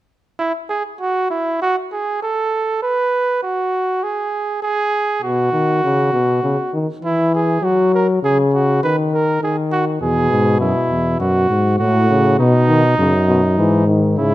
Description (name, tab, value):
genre	classical, imitative canzona for brass ensemble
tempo	100 BPM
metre	4/4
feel	straight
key	E major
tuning	A4 = 441 Hz
part	clear flugelhorn	second line	0.4-14.3 s	D#4 to B4	-18 LUFS	right 2 dB	none
part	warm euphonium	accompaniment	5.2-14.3 s	A2 to F#3	-18 LUFS	left 2 dB	none
part	dark bass trombone	bass	10.0-14.3 s	E2 to B2	-16 LUFS	left 1 dB	none
room	moderate recital hall reverb, RT60 1.3 s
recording	close, detailed microphones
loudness	-15 LUFS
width	side -15 dB against mid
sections	0.4-14.3 A section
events	none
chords	0.4 N.C.; 5.2 B; 6.4 C#m (rootless); 7.6 F#5; 8.8 N.C.; 10.0 E; 11.2 F#m; 12.4 B; 13.6 E/G#